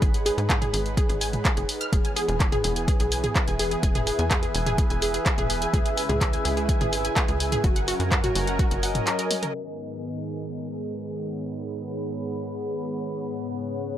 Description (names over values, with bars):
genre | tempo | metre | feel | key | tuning
melodic techno | 126 BPM | 4/4 | straight | G# minor | A4 = 440 Hz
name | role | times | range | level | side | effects
lush unison pad | sustained chords | 0.0-14.0 s | G#2 to B4 | -32 LUFS | equal | chorus, sidechain pumping
wide unison pluck | arpeggios | 0.0-9.5 s | F#4 to E#6 | -29 LUFS | right 1 dB | sidechain pumping, dub echo
tight sequencer bass | bass | 0.0-9.0 s | E1 to G#2 | -29 LUFS | equal | sidechain pumping
electronic kick drum | drums | 0.0-8.7 s | none | -24 LUFS | equal | none
punchy analog drum machine | drums | 0.0-9.5 s | handclaps, hi-hat, toms | -28 LUFS | equal | none
warbly tape-like pad | texture | 0.0-14.0 s | G#4 to B5 | -32 LUFS | equal | chorus, built-in reverb, phaser, sidechain pumping
room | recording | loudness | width
little or no reverb | low-pass filter | -23 LUFS | side -11 dB against mid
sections
0.0-9.5 A section; 9.5-14.0 B section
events
drop 0.0-9.5; drum fill 9.3; filter sweep 9.5-14.0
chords
0.0 G#m; 1.9 E; 5.7 C#m; 7.6 F#; 9.5 G#m